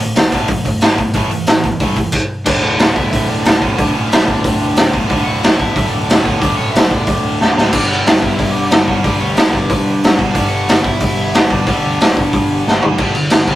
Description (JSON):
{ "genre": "punk rock", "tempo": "183 BPM", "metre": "4/4", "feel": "straight", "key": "D major", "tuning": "A4 = 440 Hz", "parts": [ { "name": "biting overdriven guitar", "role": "riff", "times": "0.0-13.6 s", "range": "D2 to A3", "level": "-21 LUFS", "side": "right 4 dB", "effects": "none" }, { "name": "distorted electric guitar", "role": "riff", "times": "0.0-13.6 s", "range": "D2 to A3", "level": "-21 LUFS", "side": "left 3 dB", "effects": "distortion" }, { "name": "growling picked electric bass", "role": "bass", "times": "0.0-13.6 s", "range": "D1 to G2", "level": "-25 LUFS", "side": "equal", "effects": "overdrive" }, { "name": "raw garage drum kit", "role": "drums", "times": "0.0-13.6 s", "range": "crash cymbal, hi-hat, kick drum, snare drum, toms", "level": "-13 LUFS", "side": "equal", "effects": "none" }, { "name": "crunchy overdriven guitar", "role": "melody", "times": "2.5-13.6 s", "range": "C#4 to F#5", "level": "-21 LUFS", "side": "equal", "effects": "none" } ], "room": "light reverb", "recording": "rough rehearsal-room recording, warm saturation", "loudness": "-11 LUFS", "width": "side -14 dB against mid", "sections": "0.0-2.5 A section; 2.5-13.0 B section", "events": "drum fill 7.4-7.7, 12.7-13.0", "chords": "0.0 D5; 1.2 A5; 2.5 D; 7.7 G5" }